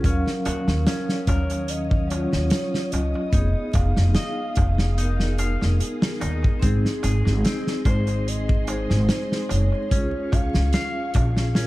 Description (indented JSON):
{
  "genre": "trip hop",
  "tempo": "73 BPM",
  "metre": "4/4",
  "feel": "swing 54% on 16ths",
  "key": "Eb minor",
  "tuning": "A4 = 439 Hz",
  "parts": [
    { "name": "pure breathy sine lead", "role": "melody", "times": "0.0-11.7 s", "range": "Ab4 to F5", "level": "-32 LUFS", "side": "equal", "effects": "chorus, tape echo" },
    { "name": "vibraphone with soft mallets", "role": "accompaniment", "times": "0.0-11.7 s", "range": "Gb3 to F5", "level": "-28 LUFS", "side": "equal", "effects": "tremolo" },
    { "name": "string machine, cellos", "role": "sustained chords", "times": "0.0-11.7 s", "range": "Ab4 to Eb6", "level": "-38 LUFS", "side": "left 1 dB", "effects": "ensemble chorus" },
    { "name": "clean electric guitar", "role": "arpeggios", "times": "0.0-11.7 s", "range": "C4 to F5", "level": "-35 LUFS", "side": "left 3 dB", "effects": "tape echo" },
    { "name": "upright bass", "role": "bass", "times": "0.0-11.7 s", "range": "F1 to Eb2", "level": "-22 LUFS", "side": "equal", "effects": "none" },
    { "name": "loose indie drum kit", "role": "drums", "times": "0.0-11.7 s", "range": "hi-hat, kick drum, snare drum", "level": "-23 LUFS", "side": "equal", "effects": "none" },
    { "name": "darbuka", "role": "percussion", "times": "0.1-11.7 s", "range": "none", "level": "-39 LUFS", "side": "right 2 dB", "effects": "none" }
  ],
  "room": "studio ambience",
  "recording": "vinyl crackle",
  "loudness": "-20 LUFS",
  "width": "side -18 dB against mid",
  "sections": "0.0-11.7 A section",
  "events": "none",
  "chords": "0.1 Ebm7; 3.3 Fm7b5; 6.6 Ab; 9.9 Db"
}